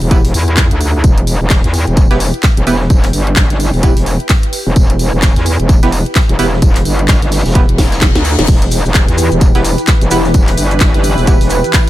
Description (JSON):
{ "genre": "bass house", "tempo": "129 BPM", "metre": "4/4", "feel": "swing 59% on 16ths", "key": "E minor", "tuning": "A4 = 440 Hz", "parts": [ { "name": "metallic wobble bass", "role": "bass", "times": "0.0-11.6 s", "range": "E1 to E2", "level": "-13 LUFS", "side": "equal", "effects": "chorus, overdrive, sidechain pumping" }, { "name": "garage drum kit", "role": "drums", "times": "0.0-11.9 s", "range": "crash cymbal, handclaps, hi-hat, snare drum", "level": "-18 LUFS", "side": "equal", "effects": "small room ambience" }, { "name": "ethereal airy pad", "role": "texture", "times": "0.0-11.9 s", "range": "E4 to G5", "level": "-25 LUFS", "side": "right 2 dB", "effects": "ensemble chorus, built-in reverb, phaser, sidechain pumping" }, { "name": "band-passed chord stab", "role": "stabs", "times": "0.1-11.3 s", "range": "B3 to B4", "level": "-19 LUFS", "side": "right 3 dB", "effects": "chorus, cassette tape, sidechain pumping, ping-pong delay" }, { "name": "electronic kick drum", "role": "drums", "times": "0.1-11.8 s", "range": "none", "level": "-10 LUFS", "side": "equal", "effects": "small room ambience" }, { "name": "raw garage drum kit", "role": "drums", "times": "0.1-11.9 s", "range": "hi-hat, snare drum, tambourine", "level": "-28 LUFS", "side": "equal", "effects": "none" }, { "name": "reverse cymbal", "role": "sound effects", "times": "7.7-8.5 s", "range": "none", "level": "-24 LUFS", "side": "left 7 dB", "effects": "none" }, { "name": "sweeping resonant pad", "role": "sustained chords", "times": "8.5-11.9 s", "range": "E3 to B4", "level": "-18 LUFS", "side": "equal", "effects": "chorus, sidechain pumping" }, { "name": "maracas", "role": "percussion", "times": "8.5-11.9 s", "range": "none", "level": "-26 LUFS", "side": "left 4 dB", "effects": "none" } ], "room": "small room ambience", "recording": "none", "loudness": "-9 LUFS", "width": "side -15 dB against mid", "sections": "0.0-11.9 A section", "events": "fade-in on ambient pad 0.0-11.9; reverse cymbal 7.7-8.5; drum fill 7.8-8.5", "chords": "0.0 Em" }